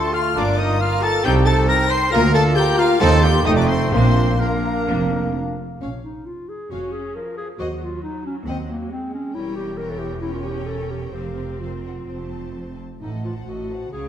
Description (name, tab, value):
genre	quick classical-period movement for symphony orchestra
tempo	125-138 BPM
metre	4/4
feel	rubato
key	Bb major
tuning	A4 = 440 Hz
part	clear oboe	second line	0.0-5.3 s	Bb4 to C6	-27 LUFS	equal	none
part	flute section	second line	0.0-5.6 s	F5 to C6	-29 LUFS	left 2 dB	none
part	mellow clarinet	second line	0.0-14.1 s	Bb3 to Bb4	-29 LUFS	left 1 dB	none
part	rich chamber violin section	second line	0.0-14.1 s	Ab4 to C6	-32 LUFS	left 2 dB	none
part	mellow bassoon	accompaniment	0.0-5.6 s	A3 to C4	-26 LUFS	right 1 dB	none
part	warm French horn section	sustained chords	0.0-5.3 s	Bb3 to C5	-23 LUFS	left 3 dB	none
part	clear trumpet	stabs	0.0-5.3 s	Bb3 to C5	-26 LUFS	right 1 dB	none
part	rich chamber violin section	melody	0.1-14.1 s	F5 to C7	-29 LUFS	left 6 dB	none
part	rich studio viola section	accompaniment	0.4-14.1 s	E3 to F4	-29 LUFS	left 1 dB	none
part	rich chamber double bass section	bass	0.4-14.1 s	E1 to Eb2	-24 LUFS	right 2 dB	none
part	rich symphonic cello section	bass	0.4-14.1 s	C2 to Db3	-26 LUFS	right 2 dB	none
part	timpani	percussion	3.9-4.6 s	Bb2	-27 LUFS	left 1 dB	none
room	wet scoring stage reverb, RT60 1.8 s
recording	none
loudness	-18 LUFS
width	side -9 dB against mid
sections	0.0-5.8 A section; 5.8-14.1 A section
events	none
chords	0.4 Gm7; 1.2 Cm; 2.1 Bb/D; 3.0 Cm/Eb; 3.5 F7; 3.9 Bb; 5.8 Bbm; 7.6 Cdim/Eb; 9.4 Edim7; 11.2 Fsus4; 13.0 Adim7